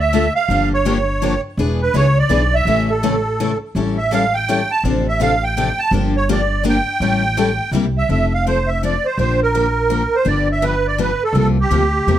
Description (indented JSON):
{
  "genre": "acoustic string swing (jazz manouche)",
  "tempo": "166 BPM",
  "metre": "3/4",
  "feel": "swing 63% on 8ths",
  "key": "F major from 8.1 s",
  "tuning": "A4 = 439 Hz",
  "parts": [
    { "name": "musette accordion", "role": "melody", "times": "0.0-12.2 s", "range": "G4 to A5", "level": "-18 LUFS", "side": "right 3 dB", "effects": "plate reverb" },
    { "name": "upright bass", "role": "bass", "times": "0.0-12.2 s", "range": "E1 to E2", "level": "-19 LUFS", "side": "equal", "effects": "none" },
    { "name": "picked steel-string acoustic guitar", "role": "accompaniment", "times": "0.1-12.2 s", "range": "C3 to A4", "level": "-21 LUFS", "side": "left 7 dB", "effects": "none" },
    { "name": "picked steel-string acoustic guitar", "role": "accompaniment", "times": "0.1-7.8 s", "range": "C3 to B4", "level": "-25 LUFS", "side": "right 2 dB", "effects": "none" }
  ],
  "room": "light reverb",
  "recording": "none",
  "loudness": "-15 LUFS",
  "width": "side -11 dB against mid",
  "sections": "0.0-8.1 A section; 8.1-12.2 B section",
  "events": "none",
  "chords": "0.5 Gm7; 1.6 E7; 2.7 A; 3.8 A7; 4.8 Dm7/A; 5.9 Gm7; 7.0 A7; 7.7 C7; 8.1 F6; 9.2 Bb6; 10.3 G7; 11.4 C7sus4"
}